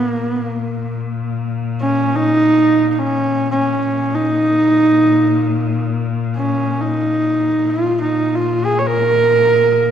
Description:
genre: mongolian traditional, Mongolian folk.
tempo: free time.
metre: none.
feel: none.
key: Bb yu mode.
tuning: A4 = 440 Hz.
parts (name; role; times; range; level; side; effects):
rich horsehead fiddle; melody; 0.0-9.9 s; Bb3 to Db5; -14 LUFS; right 2 dB; none.
bright cello; drone; 0.0-9.9 s; Bb2; -21 LUFS; left 6 dB; none.
room: wet scoring stage reverb, RT60 1.6 s.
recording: none.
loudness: -14 LUFS.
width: side -9 dB against mid.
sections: 0.0-9.9 A section.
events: none.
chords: none.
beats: free time.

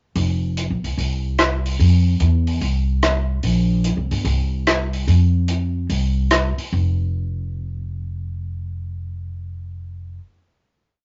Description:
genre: modal jazz.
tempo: 146 BPM.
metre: 4/4.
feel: swing 66% on 8ths.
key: unclear.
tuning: A4 = 442 Hz.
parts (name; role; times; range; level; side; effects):
upright bass; bass; 0.2-10.2 s; F1 to F2; -21 LUFS; equal; none.
compact cocktail drum kit; drums; 0.2-6.6 s; hi-hat, rim click; -25 LUFS; equal; none.
room: moderate studio reverb, RT60 0.6 s.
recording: nothing above 7.5 kHz.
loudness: -20 LUFS.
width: mono.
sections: 0.2-6.7 A section; 6.7-10.0 final note.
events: none.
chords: none.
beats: | 0.16 0.57 0.98 1.39 | 1.80 2.21 2.62 3.03 | 3.44 3.85 4.26 4.67 | 5.08 5.49 5.90 6.31 | 6.72 7.13 7.54 7.95 | 8.35 8.76 9.17 9.58.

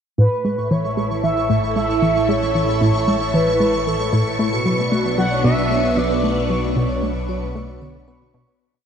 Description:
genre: ambient, sequencer-driven space music.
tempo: 114 BPM.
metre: 4/4.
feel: straight.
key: A major.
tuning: A4 = 440 Hz.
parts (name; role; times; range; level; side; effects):
expressive synth lead; melody; 0.2-7.6 s; A4 to F#5; -22 LUFS; equal; lush chorus, ping-pong delay.
phased string machine; sustained chords; 0.4-8.6 s; A2 to C#6; -22 LUFS; right 1 dB; ensemble chorus, phaser.
tight sequenced synth; riff; 0.2-8.4 s; A2 to B3; -21 LUFS; equal; chorus, cassette tape, ping-pong delay.
analog drone; bass; 1.0-8.6 s; A1 to B1; -29 LUFS; equal; chorus, phaser.
pulsing gated texture; texture; 0.5-8.6 s; C#6; -31 LUFS; right 3 dB; chorus, built-in reverb.
vibraphone with soft mallets; arpeggios; 4.5-8.6 s; F#4 to C#6; -28 LUFS; equal; auto-pan, ping-pong delay.
room: wet shimmer reverb, RT60 7.8 s.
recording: cassette tape.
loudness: -16 LUFS.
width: side -8 dB against mid.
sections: 0.2-8.6 A section.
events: fade-in on synth drone 0.2-8.6; filter sweep on synth arpeggio sound 0.2-8.6; fade-out 5.8-8.6.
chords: 0.2 A; 4.4 Bmadd9.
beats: | 0.18 0.71 1.23 1.76 | 2.29 2.81 3.34 3.87 | 4.39 4.92 5.45 5.97 | 6.50 7.02 7.55 8.08.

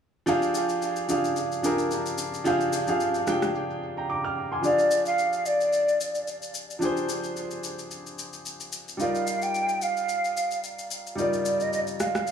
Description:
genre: amapiano.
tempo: 110 BPM.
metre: 4/4.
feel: swing 55% on 16ths.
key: F dorian.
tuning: A4 = 440 Hz.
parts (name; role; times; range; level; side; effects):
warm grand piano; accompaniment; 0.3-12.3 s; F3 to F6; -27 LUFS; equal; dub echo.
electronic shaker and rim click; drums; 0.3-12.3 s; none; -35 LUFS; left 3 dB; dub echo.
mellow hollow jazz flute; melody; 4.6-12.3 s; D5 to G5; -25 LUFS; equal; dub echo.
reverse cymbal; sound effects; 12.3 s; none; -49 LUFS; left 2 dB; none.
room: light reverb, small room ambience.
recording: echo-heavy mix.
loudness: -24 LUFS.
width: side -8 dB against mid.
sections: 0.3-4.6 A section; 4.6-12.3 B section.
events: break 3.5-4.6.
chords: 0.3 Fm69; 9.0 Ebmaj9/G.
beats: | 0.27 0.82 1.36 1.91 | 2.45 3.00 3.54 4.09 | 4.64 5.18 5.73 6.27 | 6.82 7.36 7.91 8.45 | 9.00 9.54 10.09 10.64 | 11.18 11.73 12.27.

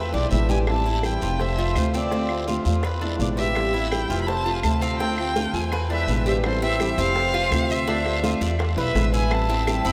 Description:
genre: latin, Cuban son and guajira.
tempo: 167 BPM.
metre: 4/4.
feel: straight.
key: A minor.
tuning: A4 = 441 Hz.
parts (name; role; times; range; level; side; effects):
warm violin; melody; 0.0-9.9 s; C5 to B5; -29 LUFS; equal; none.
Cuban tres; arpeggios; 0.0-9.9 s; C4 to D5; -31 LUFS; equal; diffuse ambient delay.
upright bass; bass; 0.0-9.9 s; F1 to E2; -28 LUFS; equal; none.
fingerpicked old ladder-braced acoustic guitar; accompaniment; 0.1-9.9 s; B2 to F4; -30 LUFS; equal; none.
bongos; percussion; 0.1-9.9 s; none; -36 LUFS; equal; none.
guiro; percussion; 0.3-9.9 s; none; -40 LUFS; equal; none.
claves; percussion; 0.7-9.9 s; none; -41 LUFS; equal; none.
breathy bright jazz flute; second line; 5.9-9.9 s; A4 to G5; -33 LUFS; equal; none.
room: wet huge ambient reverb, RT60 8.1 s.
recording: dreamy mix soaked in reverb.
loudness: -23 LUFS.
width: mono.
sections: 0.0-6.4 A section; 6.4-9.9 B section.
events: drum fill 0.0-0.7.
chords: 0.0 E7; 0.7 Am7; 1.4 Fmaj7; 2.1 Dm9; 2.8 E7; 3.6 Am7; 4.3 F; 5.0 Dm11; 5.7 E7; 6.4 Am7; 7.2 F; 7.9 Dm9; 8.6 E7; 9.3 Am7.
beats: 0.32 | 0.68 1.04 1.40 1.76 | 2.12 2.48 2.84 3.20 | 3.56 3.92 4.28 4.64 | 5.00 5.36 5.72 6.08 | 6.44 6.80 7.16 7.52 | 7.88 8.24 8.60 8.96 | 9.31 9.67.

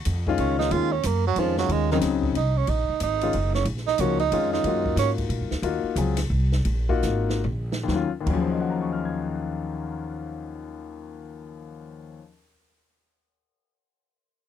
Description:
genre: modal jazz.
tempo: 128-183 BPM.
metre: 3/4.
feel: swing 64% on 8ths.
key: Eb dorian.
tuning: A4 = 440 Hz.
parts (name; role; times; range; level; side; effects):
upright bass; bass; 0.0-12.1 s; Gb1 to Bb2; -26 LUFS; equal; none.
open jazz drum kit; drums; 0.1-8.4 s; crash cymbal, hi-hat, kick drum, ride cymbal, snare drum, toms; -34 LUFS; right 1 dB; none.
clear concert grand piano; accompaniment; 0.3-12.5 s; Eb2 to Ab6; -26 LUFS; left 7 dB; none.
breathy tenor saxophone; second line; 0.4-5.1 s; Eb3 to F4; -25 LUFS; right 11 dB; none.
room: light reverb.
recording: dry, close 1970s-style studio recording.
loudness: -22 LUFS.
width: side -9 dB against mid.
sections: 0.0-7.9 A section; 7.9-10.7 B section.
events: tenor saxophone solo 0.0-7.9; slowing down 5.6-7.9; drum fill 7.0-7.9.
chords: 0.0 Ebm9.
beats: 0.06 0.39 | 0.71 1.04 1.37 | 1.70 2.02 2.35 | 2.68 3.01 3.33 | 3.66 3.99 4.32 | 4.64 4.97 5.30 | 5.63 5.96 6.30 | 6.65 7.03 7.43 | 7.88 8.35 8.81 | 9.28 9.75 10.22.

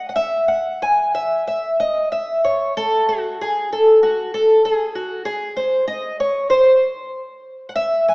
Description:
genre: fado.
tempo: 95 BPM.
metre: 4/4.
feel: uneven beats, rubato.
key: unclear.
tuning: A4 = 441 Hz.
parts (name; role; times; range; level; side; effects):
fingerpicked twelve-string acoustic guitar; solo; 0.0-8.1 s; F#4 to G#5; -16 LUFS; equal; none.
room: moderate scoring stage reverb, RT60 1.9 s.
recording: small speaker sound.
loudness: -16 LUFS.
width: side -27 dB against mid.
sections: 0.0-8.1 A section.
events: none.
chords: none.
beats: | 0.13 0.79 1.45 2.09 | 2.73 3.37 4.00 4.62 | 5.23 5.85 6.47 7.10 | 7.74.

